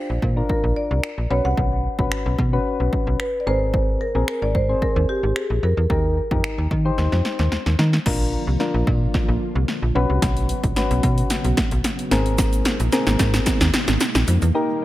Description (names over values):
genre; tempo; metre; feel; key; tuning
dance-pop; 111 BPM; 4/4; straight; unclear; A4 = 441 Hz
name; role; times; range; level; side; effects
marimba with medium mallets; melody; 0.0-7.5 s; G4 to F#5; -25 LUFS; right 1 dB; analog delay
soft electric-piano-like synth keys; accompaniment; 0.0-14.8 s; C4 to C5; -26 LUFS; left 3 dB; chorus, sidechain pumping, analog delay
slap-like FM bass; bass; 0.1-14.5 s; Ab1 to Eb3; -20 LUFS; equal; sidechain pumping
house drum kit; drums; 0.2-14.5 s; crash cymbal, finger snaps, hi-hat, kick drum, snare drum; -22 LUFS; equal; none
string machine, cellos; sustained chords; 8.1-14.8 s; C3 to G4; -28 LUFS; right 1 dB; ensemble chorus, sidechain pumping
tube shaker; percussion; 12.4-14.5 s; none; -36 LUFS; right 10 dB; none
room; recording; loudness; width
light reverb, digital ambience; echo-heavy mix; -18 LUFS; side -15 dB against mid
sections
0.0-8.1 A section; 8.1-14.8 B section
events
drum fill 7.0-8.1, 8.1-14.5; build-up 8.1-14.8; break 14.5-14.8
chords
0.0 Bb; 1.3 Bsus2; 3.5 Abadd9; 5.9 Eb; 8.1 Bb; 10.0 Bsus2; 12.1 Abadd9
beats
0.49 1.03 | 1.58 2.12 2.66 3.20 | 3.74 4.28 4.82 5.36 | 5.90 6.44 6.98 7.52 | 8.06 8.60 9.14 9.68 | 10.22 10.77 11.30 11.85 | 12.39 12.93 13.47 14.01 | 14.55